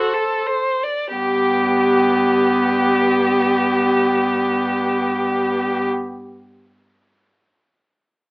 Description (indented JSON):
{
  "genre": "classical, slow romantic movement for string quartet",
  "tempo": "44-50 BPM",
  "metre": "4/4",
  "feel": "rubato",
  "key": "G major",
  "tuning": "A4 = 441 Hz",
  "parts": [
    { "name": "clear violin", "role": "melody", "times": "0.0-5.9 s", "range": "G4 to C5", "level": "-19 LUFS", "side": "left 1 dB", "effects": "none" },
    { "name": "clear violin", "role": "second line", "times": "0.0-5.9 s", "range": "F#4 to D5", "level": "-22 LUFS", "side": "equal", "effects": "none" },
    { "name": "clear viola", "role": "accompaniment", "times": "0.0-5.9 s", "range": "B3 to A4", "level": "-21 LUFS", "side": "equal", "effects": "none" },
    { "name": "rich cello", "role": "bass", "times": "1.1-5.9 s", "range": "G2", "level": "-27 LUFS", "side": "equal", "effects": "none" }
  ],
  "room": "moderate studio reverb, RT60 0.5 s",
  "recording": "AM radio sound",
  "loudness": "-15 LUFS",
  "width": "side -30 dB against mid",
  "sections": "0.0-1.1 A section; 1.1-6.1 B section",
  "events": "slowing down 0.0-1.1",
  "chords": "0.0 D7(no3); 1.1 G"
}